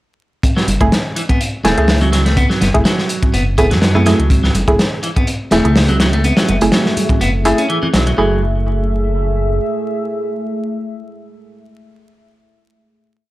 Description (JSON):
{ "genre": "breakbeat, breaks", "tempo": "124 BPM", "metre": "4/4", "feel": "swing 54% on 16ths", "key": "F# minor", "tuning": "A4 = 442 Hz", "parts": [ { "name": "crunchy breakbeat drum kit", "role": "drums", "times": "0.4-8.1 s", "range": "hi-hat, kick drum, snare drum", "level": "-16 LUFS", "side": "equal", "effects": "none" }, { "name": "electronic hi-hat", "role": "drums", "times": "0.4-8.2 s", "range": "none", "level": "-30 LUFS", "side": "equal", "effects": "overdrive" }, { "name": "congas", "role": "percussion", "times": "0.4-7.9 s", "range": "none", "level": "-24 LUFS", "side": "equal", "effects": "none" }, { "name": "clean electric guitar", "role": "riff", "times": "0.6-8.4 s", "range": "E3 to C#4", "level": "-19 LUFS", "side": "equal", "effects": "vintage 12-bit sampler grit, analog delay" }, { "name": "dark detuned saw bass", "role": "bass", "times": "0.7-9.6 s", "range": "E1 to F#2", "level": "-16 LUFS", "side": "equal", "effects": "none" }, { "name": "filtered dub chord stab", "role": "stabs", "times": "0.8-11.6 s", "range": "A3 to G#4", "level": "-18 LUFS", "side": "right 1 dB", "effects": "chorus, analog delay" }, { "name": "deep dark ambient pad", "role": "sustained chords", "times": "6.0-11.6 s", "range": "A3 to E5", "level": "-22 LUFS", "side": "equal", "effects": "chorus, built-in reverb, sidechain pumping" } ], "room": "studio ambience", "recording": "dry, gritty hardware recording, vinyl crackle", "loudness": "-12 LUFS", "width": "side -16 dB against mid", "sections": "0.4-8.2 groove; 8.2-12.1 final chord", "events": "none", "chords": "0.4 F#m9" }